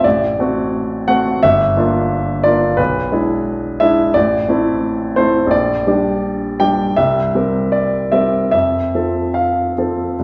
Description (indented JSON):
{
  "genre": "classical, romantic character piece for solo piano",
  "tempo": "71-90 BPM",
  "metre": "4/4",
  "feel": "rubato",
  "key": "F major",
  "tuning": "A4 = 442 Hz",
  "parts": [
    { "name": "clear baby grand piano", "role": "solo", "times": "0.0-10.2 s", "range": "G1 to G5", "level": "-16 LUFS", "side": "equal", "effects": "none" }
  ],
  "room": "wet recital hall reverb, RT60 1.4 s",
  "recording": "recorded in a church or concert hall",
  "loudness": "-16 LUFS",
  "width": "mono",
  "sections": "0.0-10.2 A section",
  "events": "none",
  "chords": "0.0 D7/A; 1.4 Gm7; 2.8 E7/B; 4.1 Am; 5.5 Gm/Bb; 7.0 C7; 8.5 F"
}